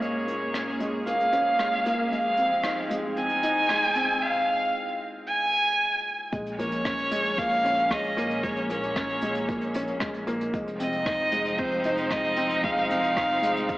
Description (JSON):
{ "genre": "piano and strings electronica", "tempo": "114 BPM", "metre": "4/4", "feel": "straight", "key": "Bb minor", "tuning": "A4 = 440 Hz", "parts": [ { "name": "dark violin", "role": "melody", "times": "0.0-13.8 s", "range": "C5 to Ab5", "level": "-25 LUFS", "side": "equal", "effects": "low-pass filter, tape echo" }, { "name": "muted string quartet", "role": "sustained chords", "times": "0.0-13.8 s", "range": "Bb2 to Ab4", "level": "-33 LUFS", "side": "equal", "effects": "sidechain pumping" }, { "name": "felt-muted upright piano", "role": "riff", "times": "0.0-13.8 s", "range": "Ab3 to Eb4", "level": "-30 LUFS", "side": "equal", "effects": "tape echo" }, { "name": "vintage brush drum kit", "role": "drums", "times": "0.0-13.8 s", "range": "hi-hat, rim click", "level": "-37 LUFS", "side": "equal", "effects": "none" }, { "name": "dark detuned saw bass", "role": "bass", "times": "6.3-13.8 s", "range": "F1 to Bb1", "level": "-41 LUFS", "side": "equal", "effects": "sidechain pumping" }, { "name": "electronic kick drum", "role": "drums", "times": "6.3-13.8 s", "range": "none", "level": "-35 LUFS", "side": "equal", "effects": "none" } ], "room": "wet lush hall reverb, RT60 1.6 s, small room ambience", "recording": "dreamy mix soaked in reverb, AM radio sound", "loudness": "-23 LUFS", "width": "side -17 dB against mid", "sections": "0.0-6.3 A section; 6.3-13.8 B section", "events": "build-up 0.0-6.3; filter sweep on violin 0.0-6.3; drop 6.3-13.8", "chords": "0.0 Bbm7; 2.1 Fm7; 6.3 Bbm7; 10.5 Fm7" }